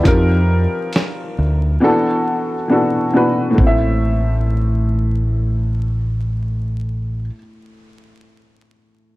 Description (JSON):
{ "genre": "lo-fi hip hop", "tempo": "68 BPM", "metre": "4/4", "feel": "swing 56% on 16ths", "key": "unclear", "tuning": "A4 = 442 Hz", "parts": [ { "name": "warm upright piano", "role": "accompaniment", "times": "0.0-9.2 s", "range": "A2 to E5", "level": "-17 LUFS", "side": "equal", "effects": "cassette tape, low-pass filter" }, { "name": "deep dub fingered electric bass", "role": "bass", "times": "0.0-7.3 s", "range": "A1 to F2", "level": "-17 LUFS", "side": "equal", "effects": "none" }, { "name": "dusty soul sampler-style drum kit", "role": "drums", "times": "0.1-3.8 s", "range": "hi-hat, kick drum, snare drum", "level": "-16 LUFS", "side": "equal", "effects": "none" } ], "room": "light reverb, digital ambience", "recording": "vinyl crackle", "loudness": "-15 LUFS", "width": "side -19 dB against mid", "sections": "0.0-3.6 A section; 3.6-7.1 B section", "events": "silent gap 1.8-3.6", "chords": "0.1 F9sus4; 1.8 E9sus4; 3.6 Am", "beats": "| 0.05 0.93 1.82 2.70 | 3.58 4.46 5.34 6.23" }